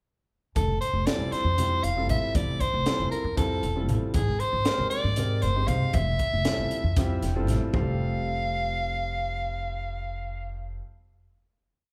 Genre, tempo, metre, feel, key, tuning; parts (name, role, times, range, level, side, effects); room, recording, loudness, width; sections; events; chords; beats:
electric jazz fusion; 234 BPM (eighths); 7/8; straight; F major; A4 = 438 Hz
breathy soprano saxophone; melody; 0.6-10.8 s; Ab4 to F5; -32 LUFS; equal
upright bass; bass; 0.6-10.8 s; E1 to Ab2; -31 LUFS; equal
crisp fusion drum kit; drums; 0.6-7.9 s; hi-hat, kick drum, snare drum, toms; -32 LUFS; equal
congas; percussion; 0.6-8.0 s; -38 LUFS; equal
warm concert grand piano; accompaniment; 1.1-10.8 s; G3 to G5; -36 LUFS; equal
moderate large studio reverb, RT60 1.3 s; band playing live in one room; -27 LUFS; mono
0.6-7.7 A section; 7.7-11.3 final chord
grand piano fill 7.0-7.7
0.6 Fmaj9; 4.1 Abmaj9; 5.9 Fmaj9; 7.7 Fadd9
| 0.56 0.82 1.07 1.33 1.58 1.84 2.10 | 2.35 2.61 2.86 3.12 3.38 3.63 3.89 | 4.15 4.40 4.66 4.92 5.17 5.43 5.69 | 5.94 6.20 6.46 6.71 6.97 7.23 7.48 | 7.74 8.00 8.25 8.51 8.76 9.02 9.27 | 9.53 9.78 10.04 10.29 10.55 10.80